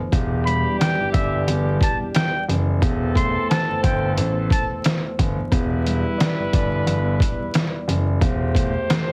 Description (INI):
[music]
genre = hip hop, boom-bap hip-hop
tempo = 89 BPM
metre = 4/4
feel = swing 55% on 16ths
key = E minor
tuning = A4 = 439 Hz
[part]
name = mellow tine electric piano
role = accompaniment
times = 0.0-9.1 s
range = E2 to D5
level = -31 LUFS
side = equal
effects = cassette tape, high-pass filter, low-pass filter
[part]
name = warm horn section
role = stabs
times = 0.1-9.1 s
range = E3 to C5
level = -31 LUFS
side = equal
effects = high-pass filter, low-pass filter, slapback echo
[part]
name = dark grand piano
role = bass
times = 0.1-9.1 s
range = E1 to A1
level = -25 LUFS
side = equal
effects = none
[part]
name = trip hop sampler-style drum kit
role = drums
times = 0.1-9.1 s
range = hi-hat, kick drum, rim click, snare drum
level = -24 LUFS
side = equal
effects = none
[part]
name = trumpet with straight mute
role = melody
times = 0.5-4.7 s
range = E5 to C6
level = -27 LUFS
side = equal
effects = high-pass filter, low-pass filter, slapback echo
[sound]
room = light reverb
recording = heavily compressed radio sound, multiband compression, vinyl crackle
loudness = -21 LUFS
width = mono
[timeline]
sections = 0.0-9.1 A section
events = none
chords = 0.1 Em7; 2.8 C6/E; 5.5 Em7; 8.2 C6/E